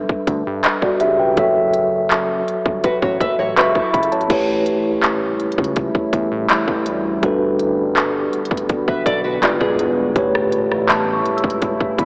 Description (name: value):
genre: contemporary R&B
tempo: 82 BPM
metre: 4/4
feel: straight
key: unclear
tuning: A4 = 441 Hz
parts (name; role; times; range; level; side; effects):
- mellow tine electric piano; accompaniment; 0.0-12.1 s; G#2 to C#6; -18 LUFS; equal; medium stereo tremolo
- fat analog bass; bass; 0.0-12.1 s; E1 to A2; -27 LUFS; equal; none
- trap drum kit; drums; 0.1-12.1 s; crash cymbal, handclaps, hi-hat, kick drum, rim click; -20 LUFS; equal; none
- nylon-string guitar; arpeggios; 2.8-4.3, 8.9-10.1 s; D4 to E5; -20 LUFS; equal; lush chorus, tape echo
- deep dark ambient pad; sustained chords; 5.2-12.1 s; C#3 to F#4; -25 LUFS; equal; chorus, built-in reverb
- celesta; texture; 10.9-12.1 s; A5 to E6; -23 LUFS; equal; tape echo
room: wet plate reverb, RT60 3.4 s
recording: dreamy mix soaked in reverb, AM radio sound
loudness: -15 LUFS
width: side -30 dB against mid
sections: 0.0-4.3 A section; 4.3-12.1 B section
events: none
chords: 0.0 G69; 1.4 F#m7; 4.3 A7; 7.2 Gmaj7; 9.4 G#dim7; 10.2 A7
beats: 0.64 | 1.38 2.11 2.84 3.57 | 4.30 5.03 5.77 6.50 | 7.23 7.96 8.69 9.42 | 10.16 10.89 11.62